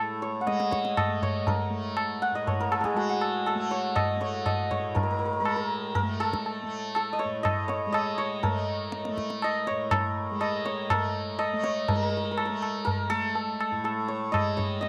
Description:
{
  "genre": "indian classical, Hindustani",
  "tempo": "121 BPM",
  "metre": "7/4",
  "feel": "straight",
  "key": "A raga marwa",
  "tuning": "A4 = 439 Hz",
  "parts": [
    { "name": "santur", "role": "melody", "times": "0.0-14.9 s", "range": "F#4 to F#5", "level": "-32 LUFS", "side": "equal", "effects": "none" },
    { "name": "tanpura", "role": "drone", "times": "0.0-14.9 s", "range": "A2 to A3", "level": "-35 LUFS", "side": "equal", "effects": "none" },
    { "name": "tabla", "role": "percussion", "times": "0.5-14.9 s", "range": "none", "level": "-32 LUFS", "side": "equal", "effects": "none" }
  ],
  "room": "moderate spring reverb, RT60 1.7 s",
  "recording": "none",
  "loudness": "-28 LUFS",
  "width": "mono",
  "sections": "0.0-11.9 A section; 11.9-14.9 B section",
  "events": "none",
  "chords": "none"
}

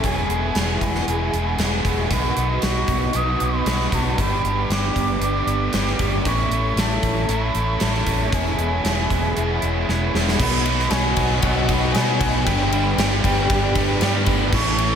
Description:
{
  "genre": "rock, shoegaze and dream pop",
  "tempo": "116 BPM",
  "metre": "4/4",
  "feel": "straight",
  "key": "unclear",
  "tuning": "A4 = 444 Hz",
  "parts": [
    { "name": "mellow hollow concert flute", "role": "melody", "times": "0.0-15.0 s", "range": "F#5 to D#6", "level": "-26 LUFS", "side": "equal", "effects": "tape echo" },
    { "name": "hollow soft pad", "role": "sustained chords", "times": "0.0-15.0 s", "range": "F#4 to D6", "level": "-31 LUFS", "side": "equal", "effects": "chorus" },
    { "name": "fingerpicked twelve-string acoustic guitar", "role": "arpeggios", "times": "0.0-15.0 s", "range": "D#3 to A4", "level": "-33 LUFS", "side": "right 6 dB", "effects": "none" },
    { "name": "biting overdriven guitar", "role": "riff", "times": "0.0-15.0 s", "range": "E2 to A4", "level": "-26 LUFS", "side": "right 6 dB", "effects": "reverse reverb" },
    { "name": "raw garage guitar", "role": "riff", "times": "0.0-15.0 s", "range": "E2 to A4", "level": "-27 LUFS", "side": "left 7 dB", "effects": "overdrive, wide subtle chorus" },
    { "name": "vintage muted fingered electric bass", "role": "bass", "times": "0.0-15.0 s", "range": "E1 to B2", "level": "-24 LUFS", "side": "equal", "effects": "none" },
    { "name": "gated 80s drum kit", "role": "drums", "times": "0.0-14.9 s", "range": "crash cymbal, hi-hat, kick drum, ride cymbal, snare drum", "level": "-23 LUFS", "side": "equal", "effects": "none" },
    { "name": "distorted electric guitar", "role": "riff", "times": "10.4-15.0 s", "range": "G2 to B3", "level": "-27 LUFS", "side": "left 2 dB", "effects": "overdrive" }
  ],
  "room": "moderate lush hall reverb, RT60 2.3 s",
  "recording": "dreamy mix soaked in reverb",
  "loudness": "-18 LUFS",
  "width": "side -8 dB against mid",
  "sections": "0.0-10.4 A section; 10.4-15.0 B section",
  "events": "drum fill 9.9-10.4",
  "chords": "0.0 Eadd9; 2.1 Badd9; 4.2 G; 6.3 A; 8.3 E6; 10.4 Badd9; 12.5 G"
}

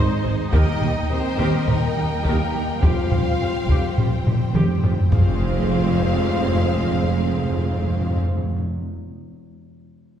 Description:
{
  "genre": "cinematic, epic orchestral film score",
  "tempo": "104 BPM",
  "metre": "4/4",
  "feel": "straight",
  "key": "F minor",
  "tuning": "A4 = 441 Hz",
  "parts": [
    { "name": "clear symphonic violin section", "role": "melody", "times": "0.0-8.2 s", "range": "Bb4 to F5", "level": "-33 LUFS", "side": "left 2 dB", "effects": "none" },
    { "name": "warm symphonic violin section", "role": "second line", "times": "0.0-8.2 s", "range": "C5 to G5", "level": "-31 LUFS", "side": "left 2 dB", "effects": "none" },
    { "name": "rich symphonic viola section", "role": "accompaniment", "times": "0.0-8.2 s", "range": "C4 to C5", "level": "-32 LUFS", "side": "right 1 dB", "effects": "none" },
    { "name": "dark French horn section", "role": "sustained chords", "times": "0.0-8.2 s", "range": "Bb3 to F4", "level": "-30 LUFS", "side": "left 5 dB", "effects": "none" },
    { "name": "rich symphonic string section", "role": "sustained chords", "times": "0.0-8.2 s", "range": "G3 to G5", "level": "-30 LUFS", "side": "equal", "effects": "none" },
    { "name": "clear symphonic double bass section", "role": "bass", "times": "0.0-8.2 s", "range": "F1 to Eb2", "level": "-28 LUFS", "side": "right 3 dB", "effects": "none" },
    { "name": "mellow tuba", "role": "bass", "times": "0.0-8.2 s", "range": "F1 to Eb2", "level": "-28 LUFS", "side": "right 3 dB", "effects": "none" },
    { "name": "rich symphonic cello section", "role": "bass", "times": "0.0-8.2 s", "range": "Eb2 to Ab2", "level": "-28 LUFS", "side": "right 2 dB", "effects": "none" },
    { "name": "taiko ensemble", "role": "drums", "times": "0.5-5.3 s", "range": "none", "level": "-21 LUFS", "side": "equal", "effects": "none" },
    { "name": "timpani", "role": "percussion", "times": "2.8-8.6 s", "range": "F2", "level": "-25 LUFS", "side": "equal", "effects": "none" },
    { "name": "impact", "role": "sound effects", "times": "5.1-8.6 s", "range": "none", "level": "-30 LUFS", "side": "equal", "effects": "none" }
  ],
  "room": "wet scoring stage reverb, RT60 1.6 s",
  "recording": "heard from further back in the room",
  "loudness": "-18 LUFS",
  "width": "side -9 dB against mid",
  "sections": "0.0-5.1 A section; 5.1-7.4 B section",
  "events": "timpani fill 2.8-5.1; drum fill 4.3-5.1; impact 5.1-7.4",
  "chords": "0.0 Ab; 0.5 Eb; 2.8 Fsus2; 5.1 Fm"
}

